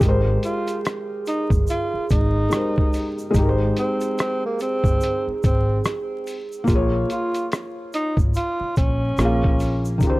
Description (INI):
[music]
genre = lo-fi hip hop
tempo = 72 BPM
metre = 4/4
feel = swing 61% on 16ths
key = Ab major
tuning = A4 = 436 Hz
[part]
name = felt-muted upright piano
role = accompaniment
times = 0.0-10.2 s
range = Db3 to F5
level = -24 LUFS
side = equal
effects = plate reverb
[part]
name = upright bass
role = bass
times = 0.0-10.0 s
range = G1 to Bb1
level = -23 LUFS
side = equal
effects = none
[part]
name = lo-fi sampler-style drum kit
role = drums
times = 0.0-10.2 s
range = hi-hat, kick drum, rim click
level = -21 LUFS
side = equal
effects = none
[part]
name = egg shaker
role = percussion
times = 0.0-10.2 s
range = none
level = -44 LUFS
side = right 2 dB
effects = none
[part]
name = breathy tenor saxophone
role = melody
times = 0.4-10.0 s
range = Bb3 to F4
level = -26 LUFS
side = equal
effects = plate reverb
[sound]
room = light reverb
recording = dry, gritty hardware recording, vinyl crackle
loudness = -19 LUFS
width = side -20 dB against mid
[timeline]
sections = 0.0-10.2 A section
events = none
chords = 0.0 Abmaj9; 3.3 Abmaj7; 6.7 Bbm7; 9.2 Bb5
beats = | 0.01 0.85 1.68 2.51 | 3.35 4.18 5.01 5.85 | 6.68 7.51 8.35 9.18 | 10.01